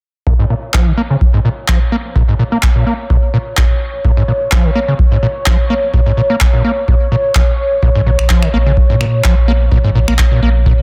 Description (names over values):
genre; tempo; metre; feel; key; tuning
acid house; 127 BPM; 4/4; swing 54% on 16ths; Bb minor pentatonic; A4 = 440 Hz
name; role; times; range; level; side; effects
warm analog pad; sustained chords; 0.3-10.8 s; Db5; -22 LUFS; equal; chorus, sidechain pumping
overdriven acid bass; riff; 0.3-10.7 s; Bb1 to Bb3; -18 LUFS; equal; sidechain pumping, digital delay
electronic kick drum; drums; 0.3-10.8 s; none; -15 LUFS; equal; none
electronic handclaps and finger snaps; drums; 0.7-10.3 s; none; -23 LUFS; equal; overdrive
warm sub bass; bass; 7.8-10.8 s; Bb1 to Bb2; -16 LUFS; equal; sidechain pumping
room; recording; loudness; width
light reverb; dense, heavily limited modern master; -13 LUFS; mono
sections
0.3-10.8 A section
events
filter sweep on acid bass 0.3-10.8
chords
0.3 Bbm